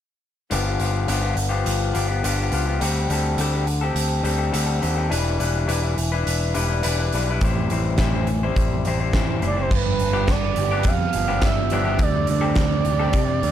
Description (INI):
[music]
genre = indie rock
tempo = 104 BPM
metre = 4/4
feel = straight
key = unclear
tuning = A4 = 440 Hz
[part]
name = electric guitar through a small old amp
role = riff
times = 0.5-13.2 s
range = G2 to C5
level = -25 LUFS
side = left 4 dB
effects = none
[part]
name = growling picked electric bass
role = bass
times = 0.5-13.5 s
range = E1 to C3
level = -23 LUFS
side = equal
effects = overdrive
[part]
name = big rock drum kit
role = drums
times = 0.5-13.5 s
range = crash cymbal, hi-hat, kick drum, snare drum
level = -25 LUFS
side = equal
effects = none
[part]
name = expressive portamento lead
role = melody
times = 9.5-13.5 s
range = B4 to F5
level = -24 LUFS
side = right 4 dB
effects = chorus, slapback echo
[part]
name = overdriven electric guitar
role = riff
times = 9.7-13.5 s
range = G2 to G4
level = -28 LUFS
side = right 14 dB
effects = ensemble chorus, slapback echo
[sound]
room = small room ambience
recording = dark, warm production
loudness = -19 LUFS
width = side -10 dB against mid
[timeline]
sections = 0.5-9.7 A section; 9.7-13.5 B section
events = none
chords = 0.5 G7; 2.8 D7sus4; 5.1 Em7; 7.4 Am7; 9.7 G7; 12.0 D7sus4